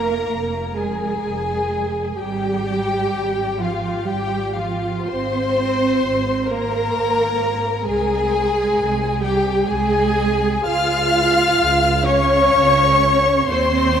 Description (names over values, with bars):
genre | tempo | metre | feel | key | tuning
classical, slow romantic movement for string orchestra | 64 BPM | 3/4 | uneven beats, rubato | unclear | A4 = 440 Hz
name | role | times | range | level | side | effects
dark chamber violin section | melody | 0.0-14.0 s | F5 to F6 | -23 LUFS | left 5 dB | none
rich chamber violin section | second line | 0.0-14.0 s | F4 to F5 | -23 LUFS | left 4 dB | none
rich chamber viola section | accompaniment | 0.0-14.0 s | F4 to F5 | -23 LUFS | right 2 dB | none
clear chamber double bass section | bass | 0.0-14.0 s | F1 to Eb2 | -26 LUFS | right 3 dB | none
warm chamber cello section | bass | 0.0-14.0 s | F3 to F4 | -23 LUFS | right 6 dB | none
room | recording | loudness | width
wet cathedral reverb, RT60 5.5 s | in a vast, echoing space | -16 LUFS | side -8 dB against mid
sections
0.0-14.0 A section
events
none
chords
0.0 Fm; 2.2 Fm/Ab; 5.1 Ab; 7.9 Ab/C; 10.6 Db; 13.5 N.C.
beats
0.29 1.24 | 2.20 3.14 4.08 | 5.07 6.02 6.95 | 7.87 8.78 9.67 | 10.64 11.59 12.54 | 13.49